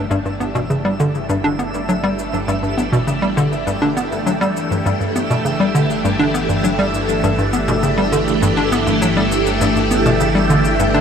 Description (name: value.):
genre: ambient, sequencer-driven space music.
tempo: 101 BPM.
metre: 4/4.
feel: straight.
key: unclear.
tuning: A4 = 440 Hz.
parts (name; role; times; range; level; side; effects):
phased string machine; sustained chords; 0.0-11.0 s; E3 to G4; -19 LUFS; equal; ensemble chorus, phaser.
hollow square pluck; riff; 0.0-11.0 s; G2 to D4; -18 LUFS; equal; chorus, ping-pong delay.
fat analog bass; bass; 0.0-11.0 s; G1; -27 LUFS; equal; none.
twinkling granular texture; texture; 0.0-11.0 s; E5; -27 LUFS; right 2 dB; built-in reverb.
shaker and percussion blips; percussion; 0.1-10.9 s; none; -33 LUFS; left 3 dB; ping-pong delay.
room: wet huge ambient reverb, RT60 8.1 s.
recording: none.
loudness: -15 LUFS.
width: side -7 dB against mid.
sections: 0.0-11.0 A section.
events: fade-in on string machine 0.0-11.0; fade-in on analog synth bass 0.0-11.0; fade-in on synth texture 0.0-11.0; fade-in on drum 0.0-11.0.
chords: 0.0 G5.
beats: | 0.11 0.70 1.29 1.89 | 2.48 3.08 3.67 4.27 | 4.86 5.45 6.05 6.64 | 7.24 7.83 8.42 9.02 | 9.61 10.21 10.80.